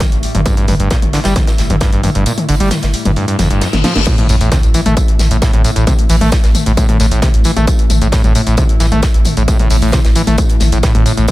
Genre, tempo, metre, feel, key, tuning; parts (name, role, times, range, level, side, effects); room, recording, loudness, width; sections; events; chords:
driving peak-time techno; 133 BPM; 4/4; straight; A4 = 440 Hz
metallic inharmonic drone; drone; 0.0-11.3 s; A2; -22 LUFS; left 1 dB; chorus, built-in reverb, sidechain pumping
electronic kick drum; drums; 0.0-11.3 s; -13 LUFS; equal; distortion
techno drum kit; drums; 0.0-11.3 s; crash cymbal, hi-hat, snare drum, tambourine, toms; -20 LUFS; left 1 dB
tight metal drum kit; drums; 0.0-11.3 s; hi-hat, snare drum, tambourine; -26 LUFS; right 2 dB; sidechain pumping on hats, high-pass filter on hats, high-pass filter on snare, sidechain pumping on perc, high-pass filter on perc, high-pass filter on room
warm sub bass; bass; 0.1-11.3 s; G1 to A1; -15 LUFS; equal; overdrive, sidechain pumping, low-pass filter
screaming distorted acid line; riff; 0.3-11.3 s; F2 to A3; -17 LUFS; equal; distortion, chorus, sidechain pumping, ping-pong delay
reverse cymbal and sub drop; sound effects; 3.4-5.9 s; -23 LUFS; left 2 dB
light reverb, digital ambience; -10 LUFS; side -17 dB against mid
0.0-4.1 A section; 4.1-11.3 B section
kick drops out 2.3-4.1; reverse cymbal 3.4-4.1; drum fill 3.7-4.1; drop 4.1-11.3; impact 4.1-5.9